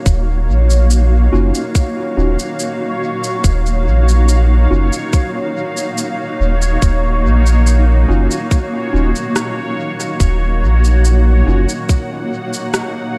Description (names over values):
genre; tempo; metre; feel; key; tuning
ambient dub; 71 BPM; 4/4; straight; Eb minor; A4 = 440 Hz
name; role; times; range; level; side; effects
granular cloud pad; sustained chords; 0.0-13.2 s; Bb3 to Gb5; -23 LUFS; equal; built-in reverb
bubbling stepped-filter texture; texture; 0.0-13.2 s; Db5; -28 LUFS; equal; chorus, built-in reverb
soft dub sub bass; bass; 0.1-11.7 s; Eb1 to Bb1; -14 LUFS; equal; none
electronic kick drum; drums; 0.1-12.1 s; none; -15 LUFS; equal; none
electronic shaker and rim click; drums; 0.1-12.9 s; none; -26 LUFS; equal; dub echo
tine electric piano; stabs; 1.3-11.6 s; Db4 to Gb4; -26 LUFS; equal; dub echo
room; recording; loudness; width
light reverb, digital ambience; none; -15 LUFS; mono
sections
0.0-13.2 A section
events
none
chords
0.0 Ebm9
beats
| 0.06 0.91 1.75 2.60 | 3.44 4.29 5.13 5.98 | 6.82 7.67 8.51 9.36 | 10.20 11.05 11.89 12.74